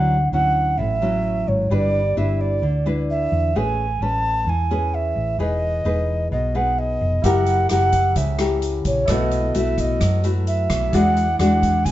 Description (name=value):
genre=bossa nova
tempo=130 BPM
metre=4/4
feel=straight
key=E major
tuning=A4 = 441 Hz
part: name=breathy reedy alto ocarina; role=melody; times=0.0-11.9 s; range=C#5 to A5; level=-22 LUFS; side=right 2 dB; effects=none
part: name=nylon-string guitar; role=accompaniment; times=0.0-11.9 s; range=A2 to B4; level=-23 LUFS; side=left 2 dB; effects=none
part: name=hollow-body short-scale fingered electric bass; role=bass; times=0.0-11.9 s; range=E1 to F#2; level=-22 LUFS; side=equal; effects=none
part: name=clear concert grand piano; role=accompaniment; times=7.2-11.9 s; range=E4 to F#5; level=-30 LUFS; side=right 4 dB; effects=none
part: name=swinging big-band drum kit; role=drums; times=7.2-11.9 s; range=hi-hat, kick drum, rim click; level=-28 LUFS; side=equal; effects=none
room=moderate studio reverb, RT60 0.9 s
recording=heard from further back in the room, nothing above 7.8 kHz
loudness=-18 LUFS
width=side -14 dB against mid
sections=0.0-11.9 A section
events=none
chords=0.0 Dmaj9; 1.7 G6; 3.5 Amaj9; 5.4 Emaj7; 7.2 F#7b9; 9.1 B7sus4; 10.9 E9